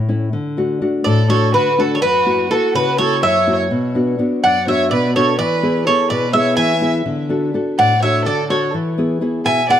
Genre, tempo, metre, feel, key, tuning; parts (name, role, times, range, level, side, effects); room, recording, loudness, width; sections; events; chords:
greek folk, Greek bouzouki band; 250 BPM (eighths); 7/8; straight; A4 = 440 Hz
nylon-string guitar; accompaniment; 0.0-9.8 s; F#2 to A4; -18 LUFS; left 2 dB
Greek bouzouki; melody; 1.0-9.8 s; A4 to G#5; -16 LUFS; right 1 dB
warm violin; second line; 1.1-9.8 s; F#4 to E5; -21 LUFS; right 3 dB
light reverb; -14 LUFS; side -10 dB against mid
0.3-9.8 A section
0.3 D; 2.0 F#7; 3.7 Bm; 5.4 E; 7.1 D; 8.7 E